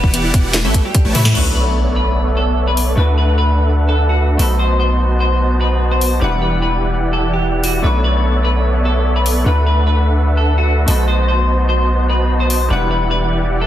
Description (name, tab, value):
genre	future bass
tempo	148 BPM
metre	4/4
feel	half-time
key	B minor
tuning	A4 = 438 Hz
part	semi-hollow electric guitar	melody	0.0-13.7 s	E3 to C5	-21 LUFS	left 1 dB	wide subtle chorus, sidechain pumping, tape echo
part	soft round pluck	arpeggios	0.0-1.3 s	A3 to G4	-26 LUFS	left 2 dB	chorus, cassette tape, sidechain pumping, tape echo
part	supersaw chords	riff	0.0-13.7 s	E3 to A5	-20 LUFS	equal	sidechain pumping, low-pass filter
part	long sustained 808-style bass	bass	0.0-13.7 s	E1 to A2	-15 LUFS	equal	sidechain pumping
part	electronic kick drum	drums	0.0-1.0 s	none	-13 LUFS	equal	studio ambience
part	trap drum kit	drums	0.1-12.6 s	crash cymbal, hi-hat, snare drum, toms	-20 LUFS	left 1 dB	studio ambience
part	clear baby grand piano	accompaniment	1.3-13.7 s	G3 to C#6	-26 LUFS	left 2 dB	sidechain pumping, tape echo
part	sub drop and reverse cymbal	sound effects	1.4-3.0, 13.6-13.7 s	none	-25 LUFS	equal	none
room	light reverb, digital ambience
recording	dense, heavily limited modern master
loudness	-13 LUFS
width	side -12 dB against mid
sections	0.0-1.4 A section; 1.4-13.7 B section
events	drop 0.0-1.4; drum fill 1.1; band accent 1.3; impact 1.4-3.0; reverse cymbal 13.6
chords	0.0 Em9; 0.5 A13; 1.4 Bm11; 3.0 D69; 4.4 B7b9; 6.2 Em9; 7.8 Bm11; 9.5 D69; 10.9 B7b9; 12.7 Em9